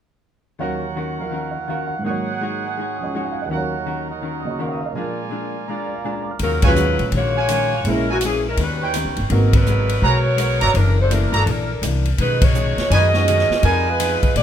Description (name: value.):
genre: jazz, big band swing.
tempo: 166 BPM.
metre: 4/4.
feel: swing 64% on 8ths.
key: Eb minor.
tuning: A4 = 440 Hz.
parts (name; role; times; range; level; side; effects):
vintage hollow-body jazz guitar; accompaniment; 0.6-14.4 s; Gb2 to Db5; -28 LUFS; left 4 dB; none.
warm grand piano; accompaniment; 0.6-13.3 s; Eb2 to F6; -27 LUFS; right 3 dB; none.
clear trumpet section; stabs; 0.6-14.2 s; Eb4 to Eb6; -24 LUFS; right 4 dB; none.
clear saxophone section; melody; 6.4-14.4 s; Fb3 to D#5; -20 LUFS; equal; none.
upright bass; bass; 6.4-14.4 s; Gb1 to Bb2; -19 LUFS; equal; none.
swinging big-band drum kit; drums; 6.4-14.4 s; hi-hat, kick drum, ride cymbal, snare drum; -23 LUFS; left 1 dB; none.
room: light reverb.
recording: minimal, uncompressed stereo recording.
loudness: -17 LUFS.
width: side -9 dB against mid.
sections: 0.6-6.4 A section; 6.4-14.4 B section.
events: band accent 6.6, 9.5, 12.4.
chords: 0.6 Ebm7; 2.0 Ab7sus4; 3.5 Ebm7; 4.9 Bb7; 6.4 Ebm11; 7.8 Bbm7b5; 8.6 Eb7alt; 9.3 Abm9; 10.7 Gb7alt; 12.2 B69; 13.6 Fm7b5.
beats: | 0.59 0.96 1.32 1.68 | 2.05 2.41 2.77 3.13 | 3.50 3.86 4.22 4.58 | 4.95 5.31 5.67 6.03 | 6.40 6.76 7.12 7.48 | 7.84 8.21 8.57 8.93 | 9.29 9.65 10.02 10.38 | 10.74 11.10 11.46 11.83 | 12.19 12.55 12.91 13.28 | 13.64 14.00 14.36.